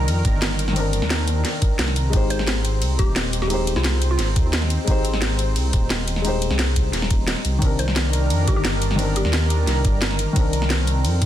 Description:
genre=liquid drum and bass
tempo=175 BPM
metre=4/4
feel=straight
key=C minor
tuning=A4 = 439 Hz
part: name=felt-muted upright piano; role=accompaniment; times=0.0-11.3 s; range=Eb3 to C5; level=-27 LUFS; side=left 3 dB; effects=ping-pong delay
part: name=lush unison pad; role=sustained chords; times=0.0-11.3 s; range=Eb3 to Bb4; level=-30 LUFS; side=equal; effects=chorus, sidechain pumping
part: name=dark detuned saw bass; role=bass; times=0.0-11.3 s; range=Eb1 to F2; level=-22 LUFS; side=equal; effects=none
part: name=drum and bass drum kit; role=drums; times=0.1-11.3 s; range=hi-hat, ride cymbal, snare drum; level=-25 LUFS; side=equal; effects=none
part: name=electronic kick drum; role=drums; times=0.2-11.3 s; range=none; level=-20 LUFS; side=equal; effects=none
part: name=hollow square pluck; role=melody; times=2.3-4.5, 7.8-9.6 s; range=F4 to C5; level=-30 LUFS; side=right 1 dB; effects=chorus, tape echo
room=little or no reverb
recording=dense, heavily limited modern master, faint mains hum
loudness=-18 LUFS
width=side -12 dB against mid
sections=0.0-11.3 A section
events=none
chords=0.0 Cm9; 2.1 Abmaj7; 7.6 Cm9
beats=0.08 0.42 | 0.76 1.10 1.45 1.79 | 2.13 2.48 2.82 3.16 | 3.50 3.85 4.19 4.53 | 4.88 5.22 5.56 5.91 | 6.25 6.59 6.93 7.28 | 7.62 7.96 8.30 8.65 | 8.99 9.33 9.68 10.02 | 10.36 10.71 11.05

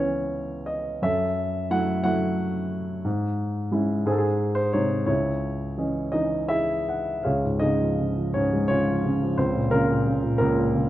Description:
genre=classical, lyrical solo piano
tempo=54-60 BPM (dotted quarters)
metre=6/8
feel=rubato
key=C# minor, Db major from 7.3 s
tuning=A4 = 439 Hz
part: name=warm grand piano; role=solo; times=0.0-10.9 s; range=C#2 to F#5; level=-22 LUFS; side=equal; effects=none
room=moderate recital hall reverb, RT60 1.5 s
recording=dark, warm production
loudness=-22 LUFS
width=side -14 dB against mid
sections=0.0-7.3 A section; 7.3-10.9 B section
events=grand piano fill 6.1-7.3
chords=0.0 C#m7; 1.0 F#m7; 3.1 C#m/G#; 4.1 G#; 5.1 C#madd9; 7.3 Db; 9.4 Bbmadd9/Db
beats=| 1.02 2.05 | 3.05 4.06 | 5.08 6.15 | 7.26 8.35 | 9.38 10.40

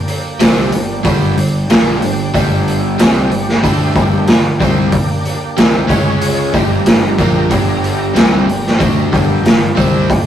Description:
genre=blues rock power trio and southern rock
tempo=93 BPM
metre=4/4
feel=straight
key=G minor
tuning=A4 = 440 Hz
part: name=overdriven tonewheel organ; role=sustained chords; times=0.0-10.3 s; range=G3 to Bb5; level=-23 LUFS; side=right 2 dB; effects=slow rotary speaker, chorus vibrato
part: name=raw garage drum kit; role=drums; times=0.1-10.2 s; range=hi-hat, kick drum, snare drum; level=-12 LUFS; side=equal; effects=none
part: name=overdriven electric guitar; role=riff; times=0.4-10.1 s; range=G2 to D4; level=-17 LUFS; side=equal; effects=none
part: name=fuzz picked electric bass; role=bass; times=0.4-10.1 s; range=G1 to D2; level=-20 LUFS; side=equal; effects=overdrive
room=light reverb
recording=rough rehearsal-room recording, warm saturation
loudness=-10 LUFS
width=side -10 dB against mid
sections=0.0-10.3 A section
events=none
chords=0.0 Gm; 5.9 C#5; 6.5 Gm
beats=0.40 1.05 1.70 | 2.34 2.99 3.64 4.28 | 4.93 5.57 6.22 6.87 | 7.51 8.16 8.80 9.45 | 10.09

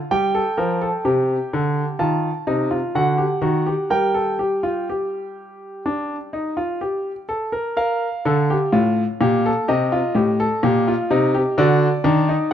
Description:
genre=classical, baroque-style 3-part fugue for grand piano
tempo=63 BPM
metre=4/4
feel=straight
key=G minor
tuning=A4 = 439 Hz
part: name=clear grand piano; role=solo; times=0.0-12.5 s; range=A2 to A5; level=-18 LUFS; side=equal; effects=none
room=light reverb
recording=close, detailed microphones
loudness=-18 LUFS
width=side -9 dB against mid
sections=0.0-7.8 A section; 7.8-12.5 B section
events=none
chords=0.1 Gm; 2.0 Adim/Eb; 3.0 D; 3.9 N.C.; 7.8 Gm; 9.7 Cm; 11.6 D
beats=| 0.12 1.06 2.00 2.95 | 3.91 4.88 5.84 6.81 | 7.77 8.73 9.69 10.63 | 11.58 12.52

